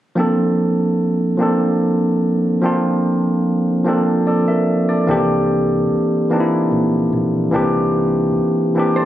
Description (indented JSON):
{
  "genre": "R&B",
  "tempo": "49 BPM (dotted quarters)",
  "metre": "6/8",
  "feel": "straight",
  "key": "Bb lydian",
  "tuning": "A4 = 444 Hz",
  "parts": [
    { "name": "barky tine electric piano", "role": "accompaniment", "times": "0.2-9.1 s", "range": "E3 to E5", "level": "-15 LUFS", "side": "equal", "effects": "overdrive" },
    { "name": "deep dub fingered electric bass", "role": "bass", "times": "5.1-8.4 s", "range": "Bb1 to C2", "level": "-25 LUFS", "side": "equal", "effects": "none" },
    { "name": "mellow electric guitar", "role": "second line", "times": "9.0-9.1 s", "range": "A4 to C5", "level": "-18 LUFS", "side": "right 4 dB", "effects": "none" }
  ],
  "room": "light reverb, digital ambience",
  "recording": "recorded on a phone in the room, studio reverb, compression",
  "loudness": "-15 LUFS",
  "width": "side -12 dB against mid",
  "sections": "0.2-9.1 A section",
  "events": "none",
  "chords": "0.2 Bbmaj7; 5.1 C9"
}